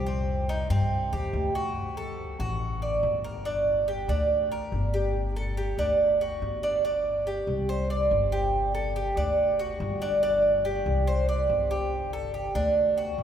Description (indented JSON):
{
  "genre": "latin",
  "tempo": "142 BPM",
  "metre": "4/4",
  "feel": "straight",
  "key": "G minor",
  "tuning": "A4 = 444 Hz",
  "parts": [
    { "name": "Cuban tres", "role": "arpeggios", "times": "0.0-13.2 s", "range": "C4 to D5", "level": "-26 LUFS", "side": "right 1 dB", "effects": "none" },
    { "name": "upright bass", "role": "bass", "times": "0.0-13.2 s", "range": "G1 to G2", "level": "-30 LUFS", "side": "left 1 dB", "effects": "none" }
  ],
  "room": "wet cathedral reverb, RT60 6.9 s",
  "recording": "recorded in a church or concert hall",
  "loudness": "-24 LUFS",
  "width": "side -9 dB against mid",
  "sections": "0.0-5.2 A section; 5.2-13.2 B section",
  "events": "none",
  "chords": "0.1 Cm; 1.8 D; 3.5 Gm; 5.2 Gsus2; 6.0 D; 6.8 G5; 8.5 Gsus2; 9.4 D; 10.2 G5; 11.9 Gsus2",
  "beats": "| 0.07 0.49 0.92 1.34 | 1.76 2.19 2.61 3.03 | 3.46 3.88 4.30 4.73 | 5.15 5.58 6.00 6.42 | 6.84 7.27 7.69 8.11 | 8.54 8.96 9.38 9.80 | 10.23 10.65 11.07 11.50 | 11.92 12.34 12.76 13.19"
}